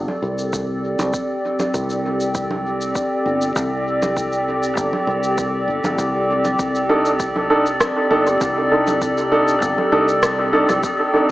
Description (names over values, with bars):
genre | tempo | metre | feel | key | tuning
ambient dub | 99 BPM | 4/4 | straight | C dorian | A4 = 440 Hz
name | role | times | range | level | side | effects
warbly tape-like pad | sustained chords | 0.0-11.3 s | C4 to D5 | -20 LUFS | equal | chorus, built-in reverb
fingered electric bass | bass | 0.0-10.8 s | G1 to C2 | -26 LUFS | equal | none
electronic congas, shaker and rim click | drums | 0.1-11.0 s | none | -25 LUFS | equal | overdrive, small room ambience, dub echo
electronic kick drum | drums | 0.5-11.0 s | none | -29 LUFS | equal | overdrive, small room ambience
dark upright piano | stabs | 6.9-11.3 s | D4 to A4 | -18 LUFS | right 1 dB | dub echo
room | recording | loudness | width
wet concert hall reverb, RT60 2.1 s | small speaker sound | -17 LUFS | side -17 dB against mid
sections
0.0-11.3 A section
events
none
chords
0.0 Csus2